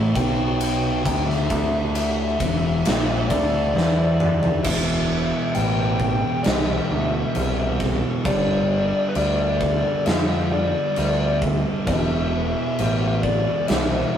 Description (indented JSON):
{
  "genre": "stoner and doom metal",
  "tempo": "66 BPM",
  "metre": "4/4",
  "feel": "straight",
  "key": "E minor",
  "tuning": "A4 = 439 Hz",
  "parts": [
    { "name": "thick fuzz guitar", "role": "riff", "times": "0.0-14.2 s", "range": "E2 to G3", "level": "-28 LUFS", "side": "left 4 dB", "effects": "distortion" },
    { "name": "thick fuzz guitar", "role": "riff", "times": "0.0-14.2 s", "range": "E2 to G3", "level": "-27 LUFS", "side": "right 4 dB", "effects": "distortion" },
    { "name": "growling picked electric bass", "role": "bass", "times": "0.0-14.2 s", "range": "E1 to F2", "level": "-24 LUFS", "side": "equal", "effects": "overdrive" },
    { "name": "fuzz lead guitar", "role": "melody", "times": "0.2-14.2 s", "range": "B4 to G5", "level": "-26 LUFS", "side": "left 2 dB", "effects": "distortion" },
    { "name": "big rock drum kit", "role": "drums", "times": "0.2-13.9 s", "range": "crash cymbal, kick drum, ride cymbal, snare drum, toms", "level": "-25 LUFS", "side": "equal", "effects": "none" }
  ],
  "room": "moderate stone room reverb, RT60 1.2 s",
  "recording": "rough rehearsal-room recording, tube saturation",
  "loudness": "-19 LUFS",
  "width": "side -9 dB against mid",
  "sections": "0.0-4.6 A section; 4.6-14.2 B section",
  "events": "lead electric guitar solo 0.0-4.6; drum fill 3.7-4.6",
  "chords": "0.0 Em; 8.3 G5; 11.9 E5"
}